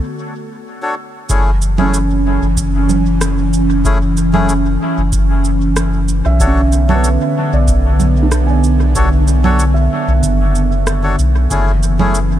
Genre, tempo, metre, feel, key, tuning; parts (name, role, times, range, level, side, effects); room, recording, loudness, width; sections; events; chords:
ambient dub; 94 BPM; 4/4; straight; F# minor; A4 = 444 Hz
airy breathy pad; sustained chords; 0.0-12.4 s; D3 to C#4; -18 LUFS; equal; chorus
melodica; stabs; 0.8-12.2 s; A3 to C#5; -22 LUFS; left 2 dB; dub echo
soft dub sub bass; bass; 1.3-12.4 s; F#1 to B1; -14 LUFS; equal
electronic cabasa, congas and rim click; drums; 1.3-12.3 s; -22 LUFS; right 6 dB; dub echo
electronic kick drum; drums; 1.3-11.6 s; -19 LUFS; equal
felt-muted upright piano; arpeggios; 1.8-11.5 s; B3 to G#5; -22 LUFS; right 4 dB; tape echo
light reverb, digital ambience; -11 LUFS; side -12 dB against mid
0.0-1.3 A section; 1.3-12.4 B section
break 0.0-1.3
0.0 Bm7 (rootless); 1.3 F#m7; 6.4 Bm7; 11.5 F#m7